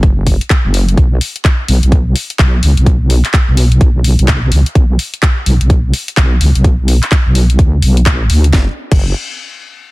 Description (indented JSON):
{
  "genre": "bass house",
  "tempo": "127 BPM",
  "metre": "4/4",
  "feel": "swing 62% on 16ths",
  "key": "unclear",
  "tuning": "A4 = 442 Hz",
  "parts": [
    { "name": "wobble bass", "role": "bass", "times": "0.0-9.1 s", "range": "F#1 to D2", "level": "-10 LUFS", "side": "equal", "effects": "chorus, overdrive, sidechain pumping" },
    { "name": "electronic kick drum", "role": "drums", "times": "0.0-9.0 s", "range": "none", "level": "-10 LUFS", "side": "equal", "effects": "none" },
    { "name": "garage drum kit", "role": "drums", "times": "0.0-9.0 s", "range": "crash cymbal, handclaps, hi-hat, snare drum", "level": "-18 LUFS", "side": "left 1 dB", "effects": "none" }
  ],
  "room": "digital ambience",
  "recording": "dense, heavily limited modern master",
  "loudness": "-9 LUFS",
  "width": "side -21 dB against mid",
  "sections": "0.0-8.5 A section; 8.5-9.9 B section",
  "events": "filter sweep on wobble bass 0.0-8.5",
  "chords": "none"
}